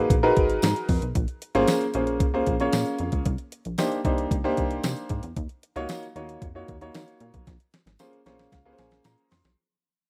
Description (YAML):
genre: early-eighties boogie funk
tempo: 114 BPM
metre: 4/4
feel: straight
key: Bb minor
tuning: A4 = 443 Hz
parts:
  - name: clear concert grand piano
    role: accompaniment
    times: 0.0-9.6 s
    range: Bb3 to C6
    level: -27 LUFS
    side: equal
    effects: none
  - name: plucky analog bass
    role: bass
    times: 0.0-9.6 s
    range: Ab1 to Eb3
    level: -33 LUFS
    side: equal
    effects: none
  - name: clean 12-bit digital drum machine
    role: drums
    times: 0.1-9.6 s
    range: hi-hat, kick drum, snare drum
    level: -29 LUFS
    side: equal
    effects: none
  - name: tambourine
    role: percussion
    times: 0.6-9.2 s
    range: none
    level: -42 LUFS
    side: equal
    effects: none
room: studio reverb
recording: rough home demo mix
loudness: -25 LUFS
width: mono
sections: 0.0-9.6 A section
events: fade-out 0.0-9.6; drum fill 7.5-9.6; grand piano fill 8.0-9.6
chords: 0.0 Abm9; 1.2 Bbm9; 3.3 Cm9; 5.4 Ebm9; 7.5 Bbm9